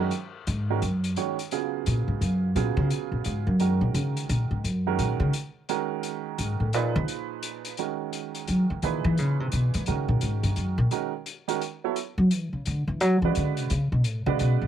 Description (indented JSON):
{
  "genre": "modal jazz",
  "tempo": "172 BPM",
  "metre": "3/4",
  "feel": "swing 64% on 8ths",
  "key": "Eb minor, G# minor from 7.8 s",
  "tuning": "A4 = 443 Hz",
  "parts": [
    { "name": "clear upright piano", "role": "accompaniment", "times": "0.0-14.7 s", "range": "Bb2 to D5", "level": "-30 LUFS", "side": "right 13 dB", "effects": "none" },
    { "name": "upright bass", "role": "bass", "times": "0.0-14.7 s", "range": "Gb2 to F#3", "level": "-24 LUFS", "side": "left 1 dB", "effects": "none" },
    { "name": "hi-hat", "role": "drums", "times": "0.1-14.5 s", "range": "none", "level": "-38 LUFS", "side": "left 7 dB", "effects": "none" }
  ],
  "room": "small room ambience",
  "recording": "1960s-style stereo with parts hard left and right",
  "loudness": "-24 LUFS",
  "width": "side -10 dB against mid",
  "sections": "0.0-7.8 A section; 7.8-14.7 A section",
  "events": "upright bass solo 0.0-14.7",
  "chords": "0.0 Ebm11; 7.8 G#m11; 12.0 Bmadd9"
}